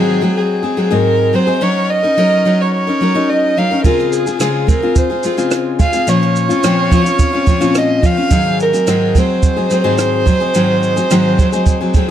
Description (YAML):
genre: acoustic pop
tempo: 107 BPM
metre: 4/4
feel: straight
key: unclear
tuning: A4 = 440 Hz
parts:
  - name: dark violin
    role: melody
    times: 0.0-12.1 s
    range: Ab4 to F5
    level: -16 LUFS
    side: right 3 dB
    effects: none
  - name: picked steel-string acoustic guitar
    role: accompaniment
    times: 0.0-12.1 s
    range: Ab2 to Bb4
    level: -14 LUFS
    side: left 2 dB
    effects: none
  - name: compact cocktail drum kit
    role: drums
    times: 3.8-12.1 s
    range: kick drum, rim click, shaker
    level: -15 LUFS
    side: right 2 dB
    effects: none
room: moderate studio reverb, RT60 0.7 s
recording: dark, warm production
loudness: -11 LUFS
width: side -10 dB against mid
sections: 0.0-12.1 A section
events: none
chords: 0.0 Ab7; 1.6 Gb6; 3.8 Dbmaj7; 6.1 Bbmadd9; 8.3 Ab7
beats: 0.50 1.06 | 1.61 2.17 2.73 3.29 | 3.85 4.40 4.96 5.52 | 6.08 6.64 7.20 7.75 | 8.31 8.87 9.43 9.99 | 10.55 11.11 11.67